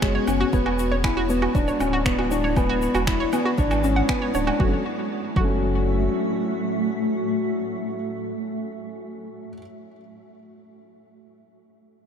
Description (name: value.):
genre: piano and strings electronica.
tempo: 118 BPM.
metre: 4/4.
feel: straight.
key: F# minor.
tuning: A4 = 440 Hz.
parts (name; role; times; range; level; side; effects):
granular cloud pad; sustained chords; 0.0-8.7 s; G#3 to E5; -28 LUFS; equal; built-in reverb, wide subtle chorus, sidechain pumping.
felt-muted upright piano; riff; 0.0-9.6 s; F#3 to F#4; -25 LUFS; left 2 dB; ping-pong delay.
warm sub bass; bass; 0.0-6.1 s; D1 to G#1; -26 LUFS; equal; sidechain pumping.
electronic finger snaps, shaker and woodblock; drums; 0.0-4.6 s; none; -31 LUFS; right 2 dB; overdrive.
electronic kick drum; drums; 0.0-5.5 s; none; -24 LUFS; equal; overdrive.
analog pluck; arpeggios; 0.1-5.5 s; F#4 to F#5; -30 LUFS; right 2 dB; chorus, cassette tape, sidechain pumping, ping-pong delay.
room: moderate huge ambient reverb, RT60 7.8 s.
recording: dreamy mix soaked in reverb.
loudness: -20 LUFS.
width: side -8 dB against mid.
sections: 0.0-4.6 A section; 4.6-8.7 B section.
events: drop 0.0-4.6.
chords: 0.0 C#7sus4; 0.5 E7; 4.6 F#m7.